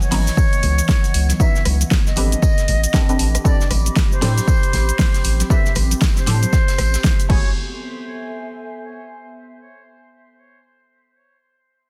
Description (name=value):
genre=deep house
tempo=117 BPM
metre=4/4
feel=swing 60% on 16ths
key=unclear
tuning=A4 = 440 Hz
part: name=silver concert flute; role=melody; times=0.0-7.5 s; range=C5 to E5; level=-29 LUFS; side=equal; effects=tape echo
part: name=filtered dub chord stab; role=stabs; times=0.0-7.5 s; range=D3 to C5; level=-30 LUFS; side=equal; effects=phaser, lush chorus, sidechain pumping, digital delay
part: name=deep house drum kit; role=drums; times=0.0-7.4 s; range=crash cymbal, hi-hat, rim click, shaker, snare drum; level=-26 LUFS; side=equal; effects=overdrive
part: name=congas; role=percussion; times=0.0-6.9 s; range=none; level=-32 LUFS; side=equal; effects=none
part: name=warbly tape-like pad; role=texture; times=0.0-9.6 s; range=E3 to D6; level=-33 LUFS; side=equal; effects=chorus, built-in reverb, sidechain pumping
part: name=warm sub bass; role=bass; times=0.1-7.5 s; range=F#1 to A2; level=-20 LUFS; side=equal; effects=sidechain pumping
part: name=warm soul drum kit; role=drums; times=0.1-7.3 s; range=hi-hat, snare drum, tambourine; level=-36 LUFS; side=equal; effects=sidechain pumping on hats, high-pass filter on hats, high-pass filter on snare, sidechain pumping on perc, high-pass filter on perc, high-pass filter on room
part: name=electronic kick drum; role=drums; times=0.4-7.4 s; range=none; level=-19 LUFS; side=equal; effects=overdrive
room=studio reverb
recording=dense, heavily limited modern master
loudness=-17 LUFS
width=mono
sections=0.0-7.6 A section; 7.6-9.6 B section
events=drop 0.0-7.6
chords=0.0 C#m11; 2.4 Am11; 7.3 F#m11; 7.6 Eadd11/B